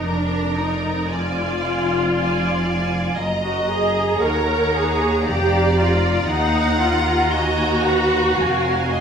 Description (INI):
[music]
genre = classical, slow romantic movement for string orchestra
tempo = 57 BPM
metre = 3/4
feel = rubato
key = Eb minor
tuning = A4 = 440 Hz
[part]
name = rich studio violin section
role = melody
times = 0.0-9.0 s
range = Bb4 to Gb5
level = -25 LUFS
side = left 1 dB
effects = none
[part]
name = rich symphonic violin section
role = second line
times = 0.0-9.0 s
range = D5 to Bb5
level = -26 LUFS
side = right 1 dB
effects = none
[part]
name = warm studio viola section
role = accompaniment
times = 0.0-9.0 s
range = D4 to Bb4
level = -20 LUFS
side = equal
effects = none
[part]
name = bright studio double bass section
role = bass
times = 0.0-9.0 s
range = F1 to Eb2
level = -26 LUFS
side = equal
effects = none
[part]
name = rich studio cello section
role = bass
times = 0.0-9.0 s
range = Eb2 to Gb2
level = -24 LUFS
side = equal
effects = none
[sound]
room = wet stone room reverb, RT60 1.3 s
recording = none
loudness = -17 LUFS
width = side -7 dB against mid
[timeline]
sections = 0.0-9.0 A section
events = none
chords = 0.0 Bb7/F; 3.2 Ebm/Gb; 5.3 Bb6/F; 6.3 Ebm